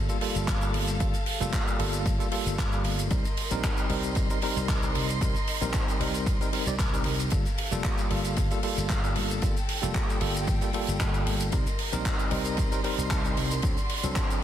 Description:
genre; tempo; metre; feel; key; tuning
nu-disco, nu disco; 114 BPM; 4/4; swing 53% on 16ths; G minor; A4 = 439 Hz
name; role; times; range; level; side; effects
barky tine electric piano; accompaniment; 0.0-14.4 s; F#3 to D5; -32 LUFS; equal; fast stereo tremolo, sidechain pumping, dub echo
dark studio violin section; sustained chords; 0.0-14.4 s; F#4 to C6; -37 LUFS; equal; sidechain pumping
slap bass; bass; 0.0-14.1 s; F1 to D2; -31 LUFS; equal; none
damped 70s drum kit; drums; 0.1-14.4 s; handclaps, hi-hat, ride cymbal, shaker; -32 LUFS; equal; none
electronic kick drum; drums; 0.5-14.3 s; none; -29 LUFS; equal; none
room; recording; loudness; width
small room ambience; dense, heavily limited modern master, faint mains hum; -25 LUFS; side -11 dB against mid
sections
0.0-14.4 A section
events
none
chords
0.0 Gm9; 3.1 Cm7; 7.3 Gm9; 11.5 Cm7; 13.6 D7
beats
0.48 | 1.00 1.53 2.06 2.58 | 3.11 3.63 4.16 4.69 | 5.21 5.74 6.27 6.79 | 7.32 7.84 8.37 8.90 | 9.42 9.95 10.48 11.00 | 11.53 12.05 12.58 13.11 | 13.63 14.16

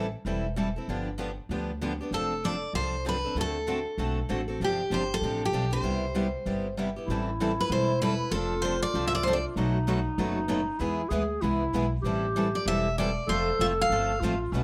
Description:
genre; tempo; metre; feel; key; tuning
acoustic string swing (jazz manouche); 193 BPM; 4/4; swing 60% on 8ths; C major, A minor from 7.1 s; A4 = 441 Hz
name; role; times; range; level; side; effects
picked steel-string acoustic guitar; accompaniment; 0.0-14.6 s; B2 to A4; -34 LUFS; equal; none
picked steel-string acoustic guitar; accompaniment; 0.0-14.6 s; B2 to B4; -39 LUFS; equal; none
upright bass; bass; 0.0-14.6 s; E1 to E2; -35 LUFS; equal; none
picked steel-string acoustic guitar; melody; 2.1-9.4, 12.6-14.4 s; G4 to F5; -31 LUFS; equal; none
dark clarinet; second line; 7.1-14.6 s; C#4 to A4; -33 LUFS; equal; none
room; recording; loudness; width
moderate club reverb, RT60 0.7 s; none; -28 LUFS; mono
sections
0.0-7.1 A section; 7.1-14.6 B section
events
none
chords
0.0 Am7; 0.9 G7; 2.1 F6; 3.4 D7; 4.6 G7sus4; 5.8 Cmaj7; 7.1 Am7; 8.3 F6; 9.6 B7; 10.8 E; 12.0 Am7; 13.3 F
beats
0.25 0.56 | 0.87 1.18 1.49 1.80 | 2.12 2.43 2.74 3.05 | 3.36 3.67 3.98 4.29 | 4.60 4.91 5.22 5.53 | 5.84 6.15 6.46 6.77 | 7.08 7.39 7.70 8.01 | 8.32 8.63 8.94 9.25 | 9.56 9.87 10.18 10.49 | 10.80 11.11 11.42 11.73 | 12.04 12.36 12.66 12.97 | 13.29 13.60 13.90 14.21 | 14.53

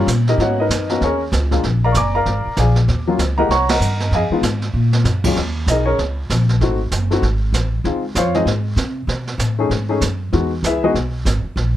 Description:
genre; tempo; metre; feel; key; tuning
jazz piano trio; 193 BPM; 4/4; swing 60% on 8ths; Eb minor; A4 = 441 Hz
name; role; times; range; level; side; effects
warm baby grand piano; melody; 0.0-10.9 s; Eb2 to D6; -18 LUFS; left 2 dB; none
upright bass; bass; 0.0-11.8 s; Gb1 to C3; -18 LUFS; equal; none
jazz brush drum kit; drums; 0.1-11.8 s; brushed snare drum, crash cymbal, hi-hat, kick drum, ride cymbal, snare drum; -25 LUFS; right 3 dB; none
room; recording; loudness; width
little or no reverb; close, detailed microphones; -15 LUFS; side -12 dB against mid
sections
0.0-5.4 A section; 5.4-11.8 B section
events
band accent 3.7; drum fill 4.7-5.1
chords
0.4 Abm11; 1.6 Bb7; 2.9 Ebm7; 3.5 C5; 4.1 Fm7; 4.7 Bb5; 5.4 Eb7sus4; 6.6 Ab7b9; 7.8 Dbmaj9; 9.1 B7(no3); 10.3 Emaj9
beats
0.08 | 0.39 0.70 1.01 1.32 | 1.64 1.95 2.26 2.57 | 2.88 3.19 3.50 3.81 | 4.12 4.43 4.74 5.05 | 5.36 5.67 5.98 6.29 | 6.61 6.92 7.22 7.54 | 7.85 8.16 8.47 8.78 | 9.09 9.40 9.71 10.02 | 10.33 10.64 10.95 11.26 | 11.57

